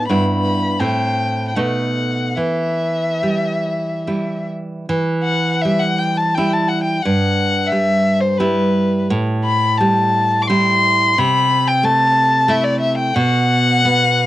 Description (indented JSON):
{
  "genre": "romantic duo for violin and classical guitar",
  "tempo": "70-93 BPM",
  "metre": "3/4",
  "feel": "rubato",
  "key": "E minor",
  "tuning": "A4 = 439 Hz",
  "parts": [
    { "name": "warm violin", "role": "melody", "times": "0.0-14.3 s", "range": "B4 to D6", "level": "-17 LUFS", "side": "left 2 dB", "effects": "cassette tape" },
    { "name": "nylon-string guitar", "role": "accompaniment", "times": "0.0-14.3 s", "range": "G2 to E4", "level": "-18 LUFS", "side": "right 2 dB", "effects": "cassette tape" }
  ],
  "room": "little or no reverb",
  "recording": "home recording on cassette",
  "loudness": "-14 LUFS",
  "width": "side -14 dB against mid",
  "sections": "0.0-4.9 A section; 4.9-14.3 A section",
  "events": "none",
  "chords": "0.1 Em/G; 0.8 Am; 1.6 B7; 2.4 Em; 7.0 Em/G; 9.1 Am7; 11.2 Am/C; 13.2 B5"
}